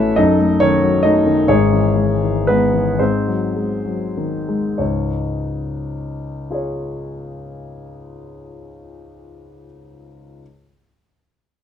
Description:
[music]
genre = classical, romantic character piece for solo piano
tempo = 31-46 BPM (dotted quarters)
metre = 6/8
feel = rubato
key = unclear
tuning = A4 = 439 Hz
[part]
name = warm concert grand piano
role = solo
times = 0.0-10.4 s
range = G#1 to F#5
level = -16 LUFS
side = left 1 dB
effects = none
[sound]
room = light reverb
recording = dark, warm production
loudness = -15 LUFS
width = side -9 dB against mid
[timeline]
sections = 0.0-4.8 A section; 4.8-8.2 B section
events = slowing down 0.0-4.8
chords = 0.2 D#dim/F#; 1.5 C#m/G#; 3.0 G#7; 4.8 C#

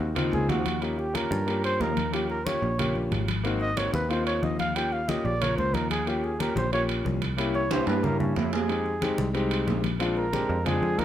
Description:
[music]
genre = Afro-Cuban jazz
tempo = 183 BPM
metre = 4/4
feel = straight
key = Eb mixolydian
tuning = A4 = 440 Hz
[part]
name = clear grand piano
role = accompaniment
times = 0.0-11.0 s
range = Ab3 to Bb4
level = -30 LUFS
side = left 3 dB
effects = none
[part]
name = picked electric bass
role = bass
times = 0.0-11.0 s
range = Ab1 to G2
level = -30 LUFS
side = right 1 dB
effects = none
[part]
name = congas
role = percussion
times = 0.0-11.0 s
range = none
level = -33 LUFS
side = left 1 dB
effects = none
[part]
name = timbales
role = percussion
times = 0.2-11.0 s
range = none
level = -33 LUFS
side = right 5 dB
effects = none
[part]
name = breathy trumpet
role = melody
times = 0.3-11.0 s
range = Db4 to G5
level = -30 LUFS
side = right 1 dB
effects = none
[sound]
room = moderate studio reverb, RT60 0.8 s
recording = none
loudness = -24 LUFS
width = side -11 dB against mid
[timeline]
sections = 0.0-11.0 A section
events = trumpet solo 0.0-11.0; drum fill 7.7-8.7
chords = 0.0 Ab7; 0.8 Eb7; 3.4 Ab7; 4.8 Eb7; 7.4 C7b9; 8.7 Fm7; 10.0 Bb7

